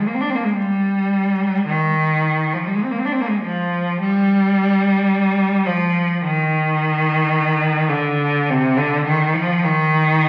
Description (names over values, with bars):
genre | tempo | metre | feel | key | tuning
classical, free, expressive piece for unaccompanied cello | 45-55 BPM | 4/4 | rubato | Eb major | A4 = 440 Hz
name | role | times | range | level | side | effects
rich cello | solo | 0.0-10.3 s | C3 to D4 | -18 LUFS | equal | none
room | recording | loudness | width
wet stone room reverb, RT60 1.3 s | very old 78 rpm record, vinyl crackle, nothing above 7.8 kHz | -18 LUFS | mono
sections
0.0-10.3 A section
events
none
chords
none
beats
0.54 | 1.67 2.83 4.01 5.13 | 6.22 7.33 8.49 9.62